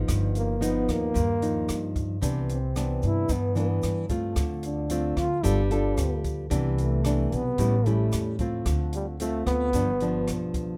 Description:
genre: bossa nova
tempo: 112 BPM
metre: 4/4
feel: straight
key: C major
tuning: A4 = 440 Hz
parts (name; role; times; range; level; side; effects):
- nylon-string guitar; accompaniment; 0.0-10.8 s; G2 to A4; -31 LUFS; equal; none
- upright bass; bass; 0.0-10.8 s; G1 to G2; -31 LUFS; equal; none
- open jazz drum kit; drums; 0.1-10.7 s; hi-hat, kick drum, rim click; -35 LUFS; equal; none
- egg shaker; percussion; 0.1-10.8 s; none; -46 LUFS; equal; none
- breathy trombone; melody; 0.4-10.5 s; G3 to F4; -31 LUFS; equal; none
room: little or no reverb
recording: none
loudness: -26 LUFS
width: mono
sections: 0.0-10.8 A section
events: none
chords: 0.1 G7alt; 2.2 Cmaj9; 4.4 Dm7; 5.5 G9; 6.5 Cmaj9; 7.6 A7; 8.7 Dm7; 9.7 G7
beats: | 0.09 0.63 1.16 1.70 | 2.24 2.77 3.31 3.84 | 4.38 4.92 5.45 5.99 | 6.53 7.06 7.60 8.13 | 8.67 9.21 9.74 10.28

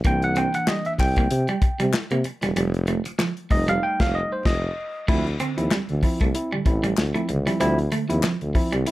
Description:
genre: funk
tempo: 95 BPM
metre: 4/4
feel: swing 56% on 16ths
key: unclear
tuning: A4 = 439 Hz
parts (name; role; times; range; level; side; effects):
- tine electric piano; stabs; 0.0-8.9 s; D3 to G5; -25 LUFS; equal; plate reverb
- warm tuba; bass; 0.0-8.8 s; E1 to C3; -25 LUFS; equal; none
- warm soul drum kit; drums; 0.0-8.9 s; crash cymbal, hi-hat, kick drum, snare drum; -24 LUFS; equal; none
- clean electric guitar; riff; 0.1-8.9 s; F3 to C4; -27 LUFS; right 3 dB; none
- group handclap; percussion; 0.7-8.4 s; none; -32 LUFS; left 8 dB; none
room: light reverb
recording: none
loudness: -20 LUFS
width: side -17 dB against mid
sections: 0.0-5.1 A section; 5.1-8.9 B section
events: tine electric piano solo 0.0-5.1; band accent 3.8-5.1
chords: 0.1 C9; 2.6 F9; 5.1 Dm9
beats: | 0.05 0.68 1.31 1.94 | 2.57 3.20 3.83 4.46 | 5.09 5.72 6.35 6.98 | 7.61 8.24 8.87

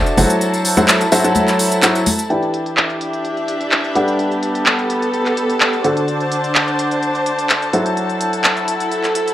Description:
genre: piano house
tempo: 127 BPM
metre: 4/4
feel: straight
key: E minor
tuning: A4 = 441 Hz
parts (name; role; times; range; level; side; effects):
- clear upright piano; riff; 0.0-9.3 s; D3 to A5; -19 LUFS; equal; low-pass filter, analog delay
- warm chamber string section; texture; 0.0-9.3 s; B3 to A5; -20 LUFS; equal; none
- house drum kit; drums; 0.1-9.3 s; handclaps, hi-hat; -17 LUFS; equal; low-pass filter on hats, low-pass filter on snare
- tambourine and congas; percussion; 0.1-2.3 s; none; -21 LUFS; left 2 dB; none
- clear studio violin section; sustained chords; 2.3-9.3 s; G4 to E6; -26 LUFS; left 2 dB; low-pass filter
room: moderate plate reverb, RT60 1.3 s, small room ambience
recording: dry, gritty hardware recording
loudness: -14 LUFS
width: side -13 dB against mid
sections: 0.0-2.3 A section; 2.3-9.3 B section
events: filter sweep on upright piano 2.3-9.3; filter sweep on violin section 2.3-9.3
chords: 0.2 F#m7b5; 2.3 Em7; 4.0 Gmaj9; 5.8 D7; 7.7 F#m7b5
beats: | 0.41 0.88 1.36 1.83 | 2.30 2.77 3.25 3.72 | 4.19 4.66 5.14 5.61 | 6.08 6.55 7.03 7.50 | 7.97 8.44 8.91

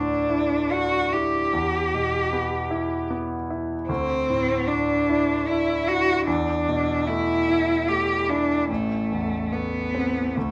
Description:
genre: classical, impressionist duo for cello and grand piano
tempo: 75 BPM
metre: 3/4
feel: rubato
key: E minor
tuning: A4 = 441 Hz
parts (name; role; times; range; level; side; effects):
- clear cello; melody; 0.0-10.5 s; A3 to G4; -25 LUFS; equal; none
- clear concert grand piano; accompaniment; 0.0-10.5 s; A1 to E4; -28 LUFS; equal; none
room: moderate large studio reverb, RT60 1.2 s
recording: none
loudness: -24 LUFS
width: mono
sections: 0.0-10.5 A section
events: none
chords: 0.0 Dsus2; 1.5 Em; 3.9 Dsus2; 6.3 E7sus4; 8.7 Am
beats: 0.71 | 1.53 2.33 3.10 | 3.89 4.69 5.48 | 6.26 7.07 7.87 | 8.69 9.52 10.36

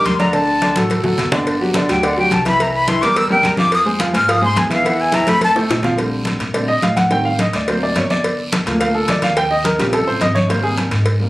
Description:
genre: Afro-Cuban jazz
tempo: 213 BPM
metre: 4/4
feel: straight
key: Bb major from 6.0 s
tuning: A4 = 438 Hz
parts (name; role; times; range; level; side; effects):
- breathy bright jazz flute; melody; 0.0-5.5 s; F5 to F6; -16 LUFS; left 1 dB; none
- warm baby grand piano; accompaniment; 0.0-11.3 s; Db3 to G5; -18 LUFS; equal; none
- upright bass; bass; 0.0-11.3 s; G1 to Bb2; -23 LUFS; equal; none
- guiro; percussion; 0.0-11.3 s; none; -28 LUFS; right 2 dB; none
- congas; percussion; 0.1-11.3 s; none; -22 LUFS; equal; none
- cowbell and bongos; percussion; 0.1-11.2 s; none; -23 LUFS; left 1 dB; none
room: moderate club reverb, RT60 0.5 s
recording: recorded on a phone in the room, studio ambience, compression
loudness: -14 LUFS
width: side -18 dB against mid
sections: 0.0-6.0 A section; 6.0-11.3 A section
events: flute solo 0.0-6.0; drum fill 0.8-1.5, 5.3-6.0; grand piano solo 6.0-11.3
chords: 0.3 D; 1.5 G5; 2.6 C7; 3.7 Fm; 4.9 Eadd11; 5.4 F; 6.0 Bbmaj13; 7.1 Am7b5; 7.7 D7b13; 8.2 Gm9; 9.4 Eb13; 10.5 Abmaj9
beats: 0.06 | 0.34 0.62 0.90 1.19 | 1.47 1.75 2.03 2.31 | 2.60 2.88 3.16 3.44 | 3.73 4.01 4.29 4.57 | 4.85 5.13 5.42 5.70 | 5.98 6.26 6.55 6.83 | 7.11 7.39 7.68 7.96 | 8.24 8.52 8.80 9.09 | 9.37 9.65 9.93 10.22 | 10.50 10.78 11.06

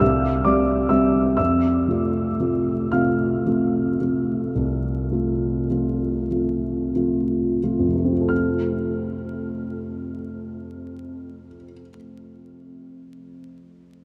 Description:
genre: classical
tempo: 29-45 BPM (dotted quarters)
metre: 12/8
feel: rubato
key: F major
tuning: A4 = 441 Hz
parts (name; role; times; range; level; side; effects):
- dark grand piano; accompaniment; 0.0-14.0 s; C2 to F6; -23 LUFS; equal; none
room: wet huge ambient reverb, RT60 8.0 s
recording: in a vast, echoing space, vinyl crackle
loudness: -22 LUFS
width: mono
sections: 0.0-8.3 A section; 8.3-14.0 B section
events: slowing down 0.0-8.3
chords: 0.0 C; 1.4 F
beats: 0.01 | 1.39 2.93 4.56 6.31 | 8.30 10.24 12.19

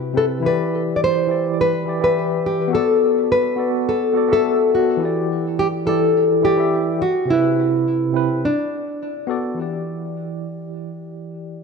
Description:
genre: chillout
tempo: 105 BPM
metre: 4/4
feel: straight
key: E minor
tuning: A4 = 440 Hz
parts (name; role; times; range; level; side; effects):
- nylon-string guitar; melody; 0.0-9.3 s; D4 to D5; -18 LUFS; left 2 dB; tape echo
- tine electric piano; accompaniment; 0.0-11.6 s; C3 to E5; -22 LUFS; moving between left 5 dB and right 6 dB; slow stereo tremolo, auto-pan
room: moderate lush hall reverb, RT60 2.2 s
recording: none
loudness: -17 LUFS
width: side -5 dB against mid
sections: 0.0-9.6 A section; 9.6-11.6 B section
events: none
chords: 0.4 Em7; 2.7 Bm7; 5.0 Em7; 7.0 Cmaj7; 8.4 Bm7; 9.6 Em7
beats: | 0.44 1.01 1.58 2.15 | 2.72 3.29 3.87 4.44 | 5.01 5.58 6.15 6.72 | 7.29 7.87 8.44 9.01 | 9.58 10.15 10.72 11.29

